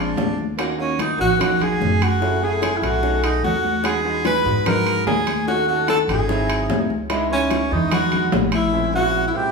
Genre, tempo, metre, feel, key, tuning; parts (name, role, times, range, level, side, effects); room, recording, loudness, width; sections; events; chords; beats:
Afro-Cuban jazz; 147 BPM; 4/4; straight; A4 = 440 Hz
warm tenor saxophone; melody; 0.0-9.5 s; C#4 to B4; -22 LUFS; right 1 dB
warm oboe; second line; 0.0-9.5 s; C#5 to B5; -26 LUFS; left 2 dB
bright grand piano; accompaniment; 0.0-9.5 s; A#2 to A4; -25 LUFS; right 1 dB
upright bass; bass; 0.0-9.3 s; F#1 to G#2; -25 LUFS; right 1 dB
bongos; percussion; 0.2-8.7 s; -30 LUFS; left 4 dB
congas; percussion; 0.2-8.7 s; -26 LUFS; left 4 dB
timbales; percussion; 0.2-8.7 s; -28 LUFS; right 3 dB
wet large studio reverb, RT60 1.2 s; band playing live in one room, studio reverb; -17 LUFS; side -4 dB against mid
0.0-9.5 A section
0.0 A#7; 0.6 D#m7; 2.2 F#m9; 3.0 B13; 3.8 Emaj9; 5.5 D#m7b5; 6.3 G#7b13; 7.1 C#m7; 8.7 A#m7b5
0.17 | 0.58 0.98 1.39 1.80 | 2.21 2.62 3.03 3.44 | 3.85 4.25 4.66 5.07 | 5.48 5.88 6.29 6.70 | 7.11 7.51 7.92 8.33 | 8.74 9.14